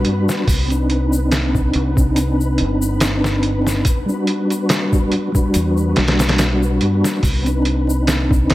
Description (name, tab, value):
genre	trip hop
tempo	71 BPM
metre	4/4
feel	swing 55% on 16ths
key	unclear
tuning	A4 = 440 Hz
part	mellow tonewheel organ	accompaniment	0.0-8.5 s	G3 to F#4	-19 LUFS	equal	chorus vibrato, fast rotary speaker, tremolo, tape echo
part	deep dub fingered electric bass	bass	0.0-8.5 s	G1 to G2	-19 LUFS	equal	none
part	trip hop sampler-style drum kit	drums	0.0-8.5 s	hi-hat, kick drum, snare drum	-18 LUFS	equal	none
part	flickering grainy texture	texture	0.0-8.5 s	B3 to B4	-28 LUFS	left 1 dB	built-in reverb
part	egg shaker	percussion	0.3-8.5 s	none	-33 LUFS	left 6 dB	none
room	light reverb, digital ambience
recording	vinyl crackle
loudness	-15 LUFS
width	side -16 dB against mid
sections	0.0-8.5 A section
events	none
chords	0.5 Cmadd9; 3.9 Em7 (rootless); 7.2 Cmadd9